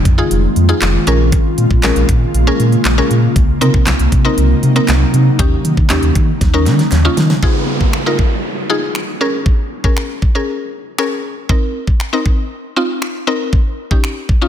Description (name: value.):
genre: dance-pop.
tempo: 118 BPM.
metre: 4/4.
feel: straight.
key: Bb minor.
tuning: A4 = 440 Hz.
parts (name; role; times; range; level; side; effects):
ethereal airy pad; sustained chords; 0.0-7.4 s; C3 to F4; -18 LUFS; equal; ensemble chorus, built-in reverb, sidechain pumping.
sub bass with octave; bass; 0.1-7.3 s; F1 to Eb3; -14 LUFS; equal; sidechain pumping.
pop drum kit; drums; 0.1-14.4 s; finger snaps, handclaps, hi-hat, kick drum, snare drum; -15 LUFS; equal; none.
mallet-like synth pluck; accompaniment; 0.2-14.5 s; C4 to Bb4; -19 LUFS; left 2 dB; chorus, sidechain pumping.
group handclap; percussion; 0.8-7.0 s; none; -31 LUFS; right 2 dB; none.
downlifter; sound effects; 7.4-11.5 s; none; -24 LUFS; right 2 dB; none.
room: light reverb, digital ambience.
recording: none.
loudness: -12 LUFS.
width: side -10 dB against mid.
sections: 0.0-7.4 A section; 7.4-14.5 B section.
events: drum fill 6.4-7.4.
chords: 0.0 Fm7; 1.1 Bbm7; 3.4 Cm7b5; 5.4 Eb7; 7.4 Fm7; 9.2 Bbm7; 11.5 Cm7; 13.5 Eb7.